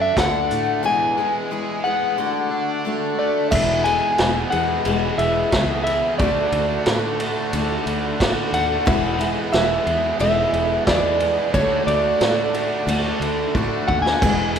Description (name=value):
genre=folk rock and heartland rock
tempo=90 BPM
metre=4/4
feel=straight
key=E mixolydian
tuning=A4 = 440 Hz
part: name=electric slide guitar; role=melody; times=0.0-14.6 s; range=C#5 to G#5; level=-21 LUFS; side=equal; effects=none
part: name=picked steel-string acoustic guitar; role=accompaniment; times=0.0-14.6 s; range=E2 to G#4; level=-26 LUFS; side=left 3 dB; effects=none
part: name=accordion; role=sustained chords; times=0.0-14.6 s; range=G#3 to D5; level=-34 LUFS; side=right 3 dB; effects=none
part: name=biting overdriven guitar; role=riff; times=0.0-14.6 s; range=E2 to G#4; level=-27 LUFS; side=right 2 dB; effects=none
part: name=fingered electric bass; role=bass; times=0.0-14.6 s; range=E1 to A2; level=-27 LUFS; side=right 1 dB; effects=none
part: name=vintage drum kit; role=drums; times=0.2-14.6 s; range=crash cymbal, hi-hat, kick drum, ride cymbal, snare drum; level=-23 LUFS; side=right 1 dB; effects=none
room=moderate concert hall reverb, RT60 2.3 s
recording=recorded in a church or concert hall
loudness=-18 LUFS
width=side -7 dB against mid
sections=0.0-3.5 A section; 3.5-14.6 B section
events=drum fill 13.6-14.2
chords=0.0 D; 0.8 E; 2.2 D; 3.5 E; 6.2 D; 8.9 E; 11.5 D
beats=0.17 | 0.84 1.51 2.18 2.85 | 3.52 4.19 4.86 5.53 | 6.20 6.87 7.54 8.20 | 8.87 9.54 10.21 10.88 | 11.55 12.21 12.88 13.55 | 14.22